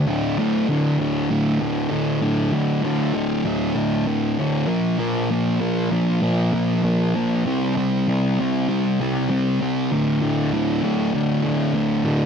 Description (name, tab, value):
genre	rock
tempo	98 BPM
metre	4/4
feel	straight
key	unclear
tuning	A4 = 440 Hz
part	thick fuzz guitar	solo	0.0-12.3 s	D2 to C4	-19 LUFS	equal	distortion
room	little or no reverb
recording	dry, close 1970s-style studio recording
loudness	-19 LUFS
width	side -7 dB against mid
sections	0.1-12.3 A section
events	none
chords	0.1 D5; 4.7 Bb5; 7.5 C5; 9.9 D5